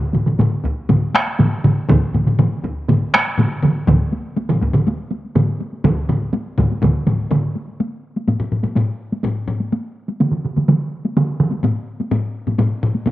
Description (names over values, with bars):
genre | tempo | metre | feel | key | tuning
japanese traditional, taiko drum ensemble | 123 BPM | 4/4 | straight | none | none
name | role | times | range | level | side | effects
taiko ensemble | percussion | 0.0-13.1 s | none | -22 LUFS | equal | none
taiko ensemble | percussion | 0.1-13.1 s | none | -19 LUFS | left 2 dB | none
taiko ensemble | percussion | 0.1-11.5 s | none | -17 LUFS | right 2 dB | none
taiko ensemble | percussion | 0.6-6.9 s | none | -23 LUFS | equal | none
room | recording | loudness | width
moderate spring reverb, RT60 2.0 s, studio ambience | home recording on cassette | -16 LUFS | side -15 dB against mid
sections
0.0-7.8 A section; 7.8-13.1 B section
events
speeding up 0.0-13.1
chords
none